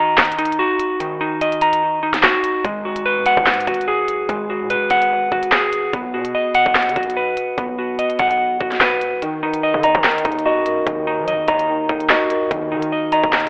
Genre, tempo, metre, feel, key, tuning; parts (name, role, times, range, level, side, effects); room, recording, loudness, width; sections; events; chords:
hip hop, drill; 146 BPM; 4/4; half-time; Eb minor; A4 = 440 Hz
mellow electric guitar; arpeggios; 0.0-13.5 s; Eb3 to Bb5; -17 LUFS; equal; low-pass filter, tape echo
drill drum kit; drums; 0.2-13.5 s; handclaps, hi-hat, kick drum, snare drum; -18 LUFS; equal
hard-hitting 808-style bass; bass; 2.6-13.5 s; Ab1 to Gb3; -28 LUFS; equal
dark concert grand piano; accompaniment; 9.2-13.5 s; Eb3 to Eb5; -20 LUFS; equal; low-pass filter
light reverb; telephone sound; -15 LUFS; side -37 dB against mid
0.0-13.5 A section
break 0.0-2.6, 9.2-9.6
0.0 Ebm; 2.6 Abm7; 5.9 B; 9.2 Ebm